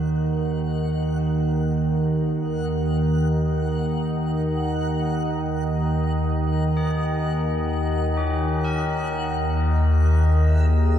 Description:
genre	dark ambient drone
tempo	free time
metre	none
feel	none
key	Eb phrygian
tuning	A4 = 440 Hz
part	tubular bells	arpeggios	0.0-11.0 s	Db4 to Bb4	-36 LUFS	left 2 dB	diffuse ambient delay
part	organ-like drone	drone	0.0-11.0 s	Eb2 to Eb3	-21 LUFS	right 1 dB	ensemble chorus, built-in reverb
part	backwards swelling texture	texture	0.0-11.0 s	E5 to Gb5	-36 LUFS	left 2 dB	built-in reverb, wide subtle chorus
part	sweeping resonant pad	sustained chords	9.1-11.0 s	Eb2 to G#4	-18 LUFS	left 1 dB	chorus
room	wet cathedral reverb, RT60 6.0 s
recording	dreamy mix soaked in reverb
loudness	-20 LUFS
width	side -9 dB against mid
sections	0.0-11.0 A section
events	fade-in on synth texture 0.0-11.0; fade-in on tubular bells 0.0-11.0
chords	0.0 Ebm; 9.1 E/Eb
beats	free time

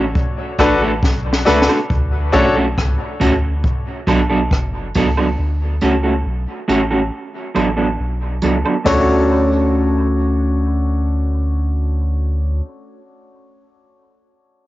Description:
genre	dub reggae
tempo	69 BPM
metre	4/4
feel	straight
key	D major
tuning	A4 = 440 Hz
part	electric guitar at the edge of break-up	accompaniment	0.0-12.7 s	F#3 to A4	-18 LUFS	right 1 dB	spring reverb, low-pass filter, cassette tape, dub echo
part	soft dub sub bass	bass	0.0-12.6 s	F#1 to D2	-19 LUFS	equal	transformer saturation
part	jazz brush drum kit	drums	0.2-9.1 s	hi-hat, kick drum, rim click, snare drum	-19 LUFS	equal	cassette tape
part	bright grand piano	stabs	0.6-2.5, 8.9-12.6 s	D4 to C#5	-19 LUFS	left 2 dB	low-pass filter, cassette tape, dub echo, plate reverb
part	tambourine and woodblock	percussion	0.6-9.3 s	none	-31 LUFS	right 5 dB	dub echo
room	light reverb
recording	home recording on cassette, nothing above 7.5 kHz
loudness	-14 LUFS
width	side -16 dB against mid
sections	0.0-1.9 A section; 1.9-8.9 B section; 8.9-12.3 C section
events	drum fill 1.0-1.9; part muted 5.4-8.9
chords	0.0 D; 1.9 Dmaj7; 3.6 Bm7; 5.4 Dmaj7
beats	0.16 1.03 | 1.90 2.77 3.64 4.51 | 5.38 6.25 7.12 7.99 | 8.86 9.73 10.60 11.47

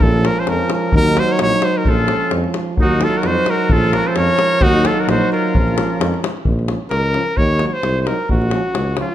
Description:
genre	balkan folk, Balkan brass band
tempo	130 BPM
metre	2/4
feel	swing 56% on 16ths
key	Bb harmonic minor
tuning	A4 = 436 Hz
part	clear cornet	melody	0.0-9.1 s	F4 to Db5	-18 LUFS	equal	none
part	clear euphonium	accompaniment	0.0-9.1 s	F3 to Gb3	-23 LUFS	right 6 dB	none
part	mellow trombone	accompaniment	0.0-9.1 s	Db4 to Eb4	-26 LUFS	left 7 dB	none
part	mellow tuba	bass	0.0-9.0 s	Bb1 to F2	-20 LUFS	equal	none
part	davul	percussion	0.0-9.1 s	none	-20 LUFS	left 1 dB	none
part	clear trumpet	second line	1.9-6.2 s	Eb4 to Bb4	-24 LUFS	left 2 dB	none
room	moderate recital hall reverb, RT60 1.4 s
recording	dark, warm production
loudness	-14 LUFS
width	side -12 dB against mid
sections	0.0-6.5 A section; 6.5-9.1 B section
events	cornet solo 6.5-9.1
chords	0.0 Bbm; 0.9 Ebm; 1.9 Bbm; 2.8 Ebm; 3.7 Bbm; 4.6 Ebm; 5.5 Bbm; 7.4 Ebm; 8.3 Bbm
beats	| 0.02 0.48 | 0.94 1.40 | 1.86 2.32 | 2.78 3.24 | 3.70 4.16 | 4.62 5.08 | 5.54 6.00 | 6.46 6.92 | 7.39 7.85 | 8.31 8.77

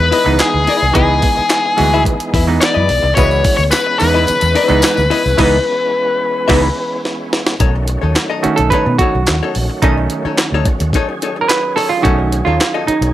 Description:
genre	funk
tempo	108 BPM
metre	4/4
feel	straight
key	B mixolydian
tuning	A4 = 440 Hz
part	nasal lead guitar with a parked wah	melody	0.0-7.0 s	G#4 to D5	-15 LUFS	left 3 dB	overdrive, analog delay
part	overdriven tonewheel organ	sustained chords	0.0-13.1 s	D#3 to G#4	-24 LUFS	right 1 dB	chorus vibrato, fast rotary speaker
part	vintage muted fingered electric bass	bass	0.0-13.1 s	A#1 to B2	-17 LUFS	equal	none
part	archtop guitar, miked and amplified	accompaniment	0.1-13.1 s	D#4 to E5	-20 LUFS	left 6 dB	none
part	jungle sampler-style drum kit	drums	0.1-13.1 s	crash cymbal, handclaps, hi-hat, kick drum, snare drum	-17 LUFS	equal	none
part	mellow clav	stabs	0.2-13.1 s	D#3 to B4	-17 LUFS	right 4 dB	none
part	tambourine	percussion	3.2-5.4 s	none	-27 LUFS	left 3 dB	none
room	light reverb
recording	none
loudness	-12 LUFS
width	side -13 dB against mid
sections	0.0-7.6 A section; 7.6-13.1 B section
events	band accent 5.4-7.6; drum fill 7.1-7.6; clav solo 7.6-13.1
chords	0.0 C#m9; 7.6 B9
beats	0.40 | 0.96 1.51 2.06 2.62 | 3.17 3.73 4.28 4.84 | 5.39 5.95 6.50 7.05 | 7.61 8.16 8.72 9.28 | 9.83 10.38 10.94 11.50 | 12.05 12.61

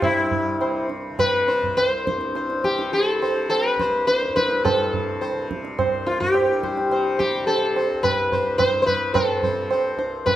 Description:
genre	indian classical, Hindustani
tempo	106 BPM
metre	4/4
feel	straight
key	C raga bilaval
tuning	A4 = 440 Hz
part	sitar	melody	0.0-10.4 s	E4 to C5	-20 LUFS	left 2 dB	none
part	tanpura	drone	0.0-10.4 s	C2 to C3	-32 LUFS	equal	none
part	tabla	percussion	0.0-10.4 s	none	-26 LUFS	right 5 dB	none
room	wet recital hall reverb, RT60 1.5 s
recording	none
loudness	-19 LUFS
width	side -12 dB against mid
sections	0.0-10.4 A section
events	speeding up 0.0-10.4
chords	none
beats	| 0.02 0.61 1.19 1.77 | 2.35 2.93 3.50 4.08 | 4.65 5.22 5.78 6.35 | 6.92 7.48 8.04 8.60 | 9.15 9.71 10.26

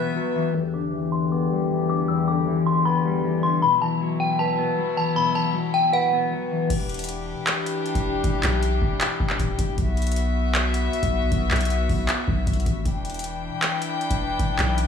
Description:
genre	hip hop, trap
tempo	156 BPM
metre	4/4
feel	half-time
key	E minor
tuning	A4 = 439 Hz
part	delicate synth tine bell	melody	0.0-6.7 s	F#5 to F#6	-24 LUFS	left 1 dB	chorus, phaser, low-pass filter, tape echo
part	mellow electric guitar	accompaniment	0.0-6.7 s	E2 to B4	-23 LUFS	left 5 dB	low-pass filter
part	rich chamber string section	sustained chords	0.0-14.9 s	E2 to G5	-28 LUFS	left 2 dB	low-pass filter
part	long sustained 808-style bass	bass	6.7-14.9 s	D1 to B1	-25 LUFS	equal	none
part	booming analog drum machine	drums	6.7-14.9 s	crash cymbal, handclaps, hi-hat, kick drum	-25 LUFS	equal	none
room	light reverb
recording	studio reverb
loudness	-21 LUFS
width	side -6 dB against mid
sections	0.5-6.7 A section; 6.7-14.9 B section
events	break 0.0-0.5; filter sweep 0.5-6.7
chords	0.0 Bsus4; 0.5 Em7; 3.6 Bsus4; 6.7 Em7; 9.8 Bsus4; 12.9 Em7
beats	0.16 | 0.55 0.93 1.32 1.70 | 2.09 2.47 2.86 3.24 | 3.62 4.01 4.39 4.78 | 5.16 5.55 5.93 6.32 | 6.70 7.09 7.47 7.86 | 8.24 8.62 9.01 9.39 | 9.78 10.16 10.55 10.93 | 11.32 11.70 12.09 12.47 | 12.86 13.24 13.62 14.01 | 14.39 14.78

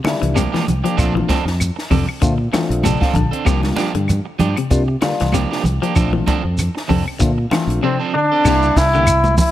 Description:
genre	afrobeat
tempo	96 BPM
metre	4/4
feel	swing 55% on 16ths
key	C mixolydian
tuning	A4 = 444 Hz
part	electric guitar at the edge of break-up	arpeggios	0.0-9.1 s	C3 to F3	-23 LUFS	left 6 dB	none
part	electric guitar at the edge of break-up	stabs	0.0-9.3 s	F3 to A4	-24 LUFS	right 7 dB	tremolo
part	congas	percussion	0.0-9.5 s	none	-23 LUFS	right 1 dB	none
part	barky tine electric piano	accompaniment	0.1-8.8 s	G3 to A5	-25 LUFS	left 3 dB	overdrive, phaser
part	compact cocktail drum kit	drums	0.1-9.5 s	crash cymbal, hi-hat, kick drum, snare drum	-21 LUFS	equal	none
part	claves	percussion	0.1-9.2 s	none	-30 LUFS	left 3 dB	none
part	shekere	percussion	0.1-9.5 s	none	-23 LUFS	right 1 dB	none
part	fingered electric bass	bass	0.2-9.4 s	Bb1 to C3	-19 LUFS	equal	none
part	brilliant trombone	melody	7.8-9.5 s	C4 to E4	-15 LUFS	equal	slapback echo
room	light reverb, studio reverb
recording	none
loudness	-14 LUFS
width	side -13 dB against mid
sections	0.0-8.5 A section; 8.5-9.5 B section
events	tine electric piano fill 2.5-3.5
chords	0.0 C9sus4; 1.0 Bbmaj9; 3.5 C9sus4; 6.0 Bbmaj9; 8.5 C7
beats	0.36 | 0.98 1.61 2.23 2.85 | 3.48 4.10 4.72 5.34 | 5.97 6.59 7.21 7.83 | 8.45 9.07

